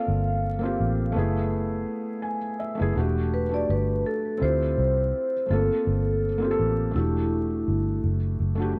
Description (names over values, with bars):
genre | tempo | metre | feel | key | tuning
lo-fi hip hop | 83 BPM | 4/4 | swing 55% on 16ths | unclear | A4 = 440 Hz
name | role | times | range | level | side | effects
vibraphone with medium mallets | melody | 0.0-8.0 s | E4 to F5 | -31 LUFS | equal | low-pass filter, dub echo
felt-muted upright piano | accompaniment | 0.0-8.8 s | E3 to G#5 | -31 LUFS | equal | low-pass filter
vintage muted fingered electric bass | bass | 0.1-8.7 s | E1 to D2 | -28 LUFS | equal | none
room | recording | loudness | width
moderate spring reverb, RT60 1.7 s, small room ambience | echo-heavy mix, vinyl crackle | -25 LUFS | mono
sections
0.0-8.7 A section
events
felt piano fill 1.9-3.0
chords
0.0 Gm11; 1.2 F#m11; 3.0 Em11; 4.4 Dm11; 5.5 Gm11; 6.9 Em11